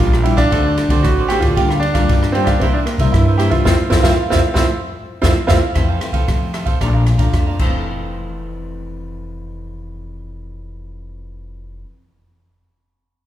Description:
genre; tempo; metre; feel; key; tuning
samba and choro; 114 BPM; 4/4; straight; F major; A4 = 440 Hz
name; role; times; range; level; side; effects
clear grand piano; melody; 0.0-5.6 s; Bb3 to G4; -19 LUFS; right 2 dB; none
cavaquinho; accompaniment; 0.0-11.9 s; E4 to Bb5; -24 LUFS; right 4 dB; none
nylon-string guitar; accompaniment; 0.0-12.0 s; F2 to F#4; -24 LUFS; left 4 dB; none
upright bass; bass; 0.0-11.8 s; F1 to F3; -20 LUFS; equal; none
open jazz drum kit; drums; 0.0-7.7 s; crash cymbal, kick drum, ride cymbal, rim click, snare drum; -18 LUFS; equal; none
room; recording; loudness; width
moderate recital hall reverb, RT60 1.6 s; recorded in a church or concert hall; -13 LUFS; side -12 dB against mid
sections
0.0-5.8 A section; 5.8-7.9 B section; 7.9-12.1 C section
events
band accent 3.7-5.8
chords
0.0 Gm7/Bb; 0.5 D7; 1.6 Gm7/D; 2.6 C7; 3.7 Fmaj7; 6.8 Bbmaj7; 7.6 Fmaj7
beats
0.00 0.53 1.05 | 1.57 2.10 2.62 3.14 | 3.67 4.19 4.71 5.24 | 5.76 6.29 6.81 7.33 | 7.86 8.38 8.91 9.43 | 9.96 10.48 11.01 11.53

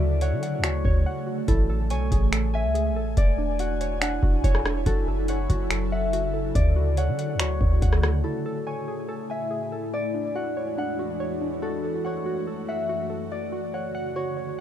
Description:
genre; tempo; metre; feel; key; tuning
hip hop, atmospheric cloud-rap; 142 BPM; 4/4; half-time; unclear; A4 = 441 Hz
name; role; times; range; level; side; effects
Celtic harp; melody; 0.0-14.6 s; A4 to F#5; -31 LUFS; left 4 dB; digital delay
ethereal airy pad; sustained chords; 0.0-14.6 s; D2 to G#5; -30 LUFS; equal; ensemble chorus, built-in reverb, sidechain pumping
warbly dusty pluck; arpeggios; 0.0-14.6 s; D4 to G#5; -34 LUFS; right 4 dB; chorus, digital delay
warm 808-style bass; bass; 0.0-8.2 s; E1 to D3; -24 LUFS; equal; none
booming analog drum machine; drums; 0.2-8.1 s; finger snaps, hi-hat, kick drum, rim click; -24 LUFS; equal; none
room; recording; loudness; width
light reverb; rough home demo mix; -23 LUFS; side -10 dB against mid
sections
0.0-8.2 A section; 8.2-14.6 B section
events
break 1.1-1.5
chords
0.0 Dmaj7; 1.5 Amaj7; 3.2 E13; 4.9 F#m7; 6.6 Dmaj7; 8.2 Amaj7; 9.9 E13; 11.6 F#m7; 13.3 Dmaj7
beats
0.21 0.64 1.06 | 1.48 1.91 2.33 2.75 | 3.17 3.60 4.02 4.44 | 4.86 5.29 5.71 6.13 | 6.55 6.98 7.40 7.82 | 8.24 8.67 9.09 9.51 | 9.93 10.36 10.78 11.20 | 11.62 12.05 12.47 12.89 | 13.31 13.74 14.16 14.58

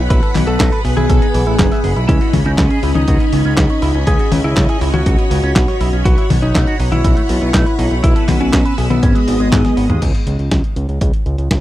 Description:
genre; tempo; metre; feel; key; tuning
italo disco; 121 BPM; 4/4; straight; C# minor; A4 = 440 Hz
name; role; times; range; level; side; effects
string machine, full ensemble; sustained chords; 0.0-10.0 s; G#3 to E6; -22 LUFS; left 1 dB; ensemble chorus
electric guitar with an envelope filter; arpeggios; 0.0-10.0 s; G#2 to E5; -26 LUFS; right 4 dB; tape echo
fat analog bass; bass; 0.0-11.6 s; F#1 to G#2; -17 LUFS; equal; tube saturation
lightly driven lead guitar; melody; 0.1-9.9 s; B3 to B4; -20 LUFS; left 1 dB; tape echo
dusty soul sampler-style drum kit; drums; 0.1-11.6 s; crash cymbal, handclaps, hi-hat, snare drum, toms; -20 LUFS; left 1 dB; none
electronic kick drum; drums; 0.1-11.6 s; none; -16 LUFS; equal; none
room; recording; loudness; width
little or no reverb; dry, close 1970s-style studio recording; -12 LUFS; side -14 dB against mid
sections
0.0-10.0 A section; 10.0-11.6 B section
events
drum fill 9.5-10.0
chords
0.1 Esus2/B; 2.1 C#7(no3); 6.1 Bsus2; 8.0 Esus2/B; 9.0 G#m; 10.0 N.C.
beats
| 0.10 0.60 1.09 1.59 | 2.09 2.58 3.08 3.57 | 4.07 4.57 5.06 5.56 | 6.05 6.55 7.04 7.54 | 8.04 8.53 9.03 9.52 | 10.02 10.52 11.01 11.51

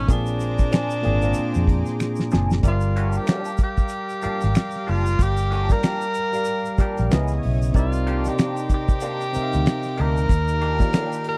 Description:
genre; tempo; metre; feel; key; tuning
R&B, neo-soul; 94 BPM; 4/4; swing 58% on 16ths; unclear; A4 = 436 Hz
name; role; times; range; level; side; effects
warm tenor saxophone; melody; 0.0-11.4 s; D4 to Bb4; -29 LUFS; equal; slapback echo
barky tine electric piano; accompaniment; 0.0-11.4 s; Bb2 to G5; -30 LUFS; equal; overdrive
lush unison pad; sustained chords; 0.0-11.4 s; Eb4 to Eb6; -38 LUFS; equal; chorus
vintage muted fingered electric bass; bass; 0.0-10.8 s; Gb1 to F2; -24 LUFS; equal; none
cloth-damped thuddy drum kit; drums; 0.1-11.4 s; finger snaps, hi-hat, kick drum, snare drum; -22 LUFS; equal; none
tube shaker and finger snaps; percussion; 0.1-11.2 s; none; -43 LUFS; equal; none
electric guitar through a small old amp; second line; 0.7-11.2 s; Eb3 to Ab4; -34 LUFS; equal; wah
room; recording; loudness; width
little or no reverb; dry, close 1970s-style studio recording; -22 LUFS; mono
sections
0.0-2.6 A section; 2.6-11.4 B section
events
drum fill 2.0-2.6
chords
0.1 Bb9; 2.6 Gm7; 7.1 Dbm9; 7.7 Cm9; 10.3 Ebmaj9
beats
| 0.09 0.72 1.36 2.00 | 2.64 3.28 3.92 4.55 | 5.19 5.83 6.47 7.11 | 7.74 8.38 9.02 9.66 | 10.30 10.94

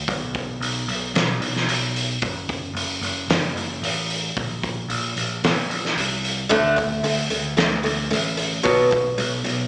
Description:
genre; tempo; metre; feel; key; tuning
quiet-loud alternative rock; 112 BPM; 4/4; straight; unclear; A4 = 440 Hz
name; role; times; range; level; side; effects
overdriven picked electric bass; bass; 0.1-9.7 s; F#1 to D2; -27 LUFS; equal; none
loose indie drum kit; drums; 0.1-9.6 s; hi-hat, kick drum, snare drum; -23 LUFS; equal; none
picked steel-string acoustic guitar; arpeggios; 6.5-9.7 s; B2 to D4; -20 LUFS; equal; none
room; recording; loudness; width
moderate lush hall reverb, RT60 2.1 s; live gig heard through the venue's PA, club reverb, small speaker sound; -20 LUFS; side -31 dB against mid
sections
0.0-9.7 A section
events
none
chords
0.0 N.C.; 2.2 F#m; 4.4 Bbsus2; 6.5 D5; 8.6 B5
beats
| 0.07 0.60 1.14 1.68 | 2.21 2.75 3.29 3.82 | 4.36 4.89 5.43 5.96 | 6.50 7.04 7.57 8.11 | 8.64 9.18

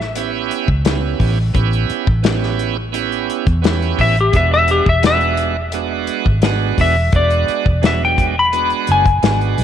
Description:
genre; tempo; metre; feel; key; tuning
straight-eighth soul blues; 86 BPM; 4/4; straight; E mixolydian; A4 = 442 Hz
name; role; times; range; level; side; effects
clean lap steel guitar; melody; 0.0-9.6 s; G4 to B5; -16 LUFS; left 3 dB; none
vintage muted fingered electric bass; bass; 0.0-9.6 s; E1 to E2; -18 LUFS; equal; none
warm soul drum kit; drums; 0.0-9.6 s; hi-hat, kick drum, snare drum; -19 LUFS; left 2 dB; none
bright tonewheel organ; accompaniment; 0.2-9.6 s; F#3 to G4; -21 LUFS; right 13 dB; overdrive, slow rotary speaker
room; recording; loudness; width
light reverb, studio ambience; 1960s-style stereo; -13 LUFS; side -9 dB against mid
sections
0.0-9.6 A section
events
none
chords
0.0 A9; 4.3 E9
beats
0.15 0.85 | 1.55 2.25 2.94 3.64 | 4.34 5.04 5.73 6.43 | 7.13 7.83 8.53 9.22

